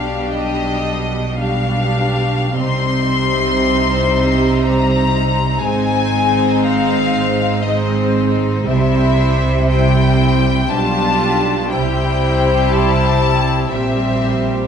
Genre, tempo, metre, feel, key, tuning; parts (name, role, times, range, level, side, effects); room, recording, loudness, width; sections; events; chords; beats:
classical, slow romantic movement for string orchestra; 59 BPM; 3/4; rubato; C major from 8.7 s; A4 = 440 Hz
rich studio violin section; melody; 0.0-14.7 s; Eb5 to C6; -20 LUFS; left 4 dB
rich studio violin section; second line; 0.0-14.7 s; D4 to C5; -21 LUFS; left 3 dB
warm studio viola section; accompaniment; 0.0-14.7 s; G3 to E4; -19 LUFS; right 1 dB
dark chamber double bass section; bass; 0.0-14.7 s; Ab1 to C2; -20 LUFS; right 2 dB
warm studio cello section; bass; 0.0-14.7 s; Ab2 to C3; -20 LUFS; right 2 dB
moderate scoring stage reverb, RT60 1.9 s; dark, warm production, nothing above 10.4 kHz; -13 LUFS; side -7 dB against mid
0.0-14.7 A section
0.0 G7/B; 2.6 Cm; 5.6 Ab; 8.7 C; 10.7 G7/B; 11.7 C; 13.7 C7/Bb
0.34 1.40 | 2.55 3.59 4.61 | 5.63 6.66 7.66 | 8.67 9.69 10.71 | 11.71 12.70 13.71